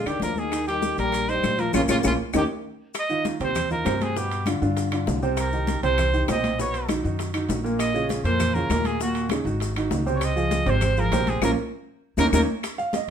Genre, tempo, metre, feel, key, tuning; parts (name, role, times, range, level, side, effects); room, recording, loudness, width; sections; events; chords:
Afro-Cuban jazz; 198 BPM; 4/4; straight; A4 = 438 Hz
clear trumpet; melody; 0.0-12.4 s; F4 to Eb5; -26 LUFS; right 1 dB
breathy trombone; second line; 0.0-2.4 s; Db3 to G3; -30 LUFS; left 8 dB
upright bass; bass; 0.0-13.1 s; Ab1 to G2; -27 LUFS; equal
congas; percussion; 0.0-13.1 s; -31 LUFS; left 2 dB
warm concert grand piano; accompaniment; 0.1-13.1 s; Bb2 to F5; -26 LUFS; right 2 dB
claves; percussion; 0.1-12.8 s; -37 LUFS; left 7 dB
maracas; percussion; 0.1-13.1 s; -38 LUFS; left 4 dB
timbales; percussion; 0.1-13.1 s; -35 LUFS; right 4 dB
bongos; percussion; 0.2-13.1 s; -35 LUFS; left 8 dB
moderate studio reverb, RT60 0.8 s; minimal, uncompressed stereo recording; -21 LUFS; side -8 dB against mid
0.0-2.9 A section; 2.9-12.6 B section
band accent 1.7-2.9, 11.4-12.6; drum fill 2.0-2.9, 11.9-12.6
0.0 Bb7; 0.5 Eb; 1.7 Bbm; 2.3 Eb7; 2.9 Eb69; 4.2 G7; 5.4 Cm7; 6.6 Badd9; 7.8 Bbm; 9.0 Ebm7; 9.6 Ab7; 10.2 Dbmaj9; 11.4 Bbm; 12.0 Eb5